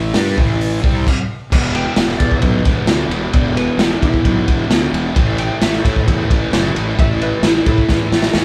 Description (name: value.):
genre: garage rock duo or trio.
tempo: 132 BPM.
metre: 4/4.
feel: straight.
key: unclear.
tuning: A4 = 438 Hz.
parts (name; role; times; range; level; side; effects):
thick fuzz guitar; riff; 0.0-8.4 s; E2 to G4; -24 LUFS; equal; distortion.
fuzz fingered electric bass; bass; 0.0-8.4 s; E1 to A2; -22 LUFS; equal; overdrive, tube saturation.
crunchy breakbeat drum kit; drums; 0.1-8.4 s; crash cymbal, hi-hat, kick drum, ride cymbal, snare drum; -18 LUFS; equal; none.
clean lap steel guitar; melody; 1.8-8.4 s; E4 to G5; -26 LUFS; equal; none.
room: light reverb.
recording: band playing live in one room.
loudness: -16 LUFS.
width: mono.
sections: 0.0-1.5 A section; 1.5-8.4 B section.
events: stop 1.1-1.5; drum fill 7.9-8.4.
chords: 0.0 A5; 1.5 E5; 5.2 A5.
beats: 0.15 0.60 1.06 | 1.51 1.97 2.43 2.88 | 3.34 3.79 4.25 4.70 | 5.16 5.62 6.07 6.53 | 6.98 7.43 7.89 8.34.